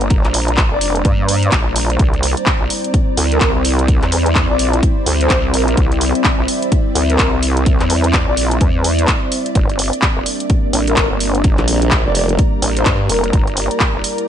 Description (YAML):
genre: bass house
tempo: 127 BPM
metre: 4/4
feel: swing 60% on 16ths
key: G dorian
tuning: A4 = 440 Hz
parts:
  - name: dark analog pad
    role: sustained chords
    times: 0.0-14.3 s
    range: G3 to C5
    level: -22 LUFS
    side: equal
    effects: chorus, phaser, sidechain pumping
  - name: vowel-sweep wobble bass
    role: bass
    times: 0.0-14.0 s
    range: F1 to G2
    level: -17 LUFS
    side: equal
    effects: chorus, tube saturation, sidechain pumping
  - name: garage drum kit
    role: drums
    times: 0.0-14.3 s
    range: handclaps, hi-hat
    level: -19 LUFS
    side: equal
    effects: none
  - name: ethereal airy pad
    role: texture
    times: 0.0-14.3 s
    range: C4 to Bb5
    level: -23 LUFS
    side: right 2 dB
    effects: ensemble chorus, built-in reverb, sidechain pumping
  - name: electronic kick drum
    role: drums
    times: 0.1-13.9 s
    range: none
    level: -16 LUFS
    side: equal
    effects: none
  - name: breathy flute-like synth lead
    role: melody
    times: 0.7-13.3 s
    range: Bb4 to D5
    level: -23 LUFS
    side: left 2 dB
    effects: wide subtle chorus, digital delay
  - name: formant-sweep wobble bass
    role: bass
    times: 11.0-13.1 s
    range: F1 to G2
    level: -17 LUFS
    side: equal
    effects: chorus, overdrive, sidechain pumping
room: digital ambience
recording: nothing above 10.6 kHz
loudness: -13 LUFS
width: side -9 dB against mid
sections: 0.0-14.3 A section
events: none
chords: 0.0 Gm; 2.0 C; 9.6 Gm